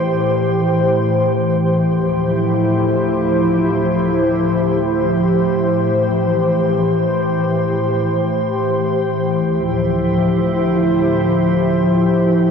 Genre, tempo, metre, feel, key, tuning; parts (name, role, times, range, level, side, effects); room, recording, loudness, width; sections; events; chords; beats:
hip hop; free time; A4 = 439 Hz
glassy FM pad; solo; 0.0-12.5 s; D2 to C5; -14 LUFS; equal; ensemble chorus, built-in reverb
wet huge ambient reverb, RT60 4.8 s; worn, warbling old tape, cassette tape, warbly pitch drift; -14 LUFS; side -6 dB against mid
0.0-1.9 A section; 1.9-9.4 B section; 9.4-12.5 C section
0.0 Am7; 1.9 Dm11; 5.6 Am7; 9.4 Dm11
free time